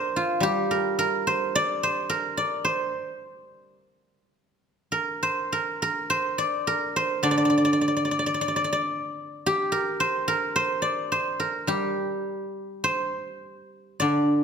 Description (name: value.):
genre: chinese traditional, Chinese solo plucked strings.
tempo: 53 BPM.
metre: 2/4.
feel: uneven beats, rubato.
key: G yu mode.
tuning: A4 = 439 Hz.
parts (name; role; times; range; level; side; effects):
guzheng; solo; 0.0-14.4 s; D3 to D5; -23 LUFS; right 1 dB; none.
room: wet recital hall reverb, RT60 1.6 s.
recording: none.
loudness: -23 LUFS.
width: side -6 dB against mid.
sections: 0.0-14.0 A section.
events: none.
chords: none.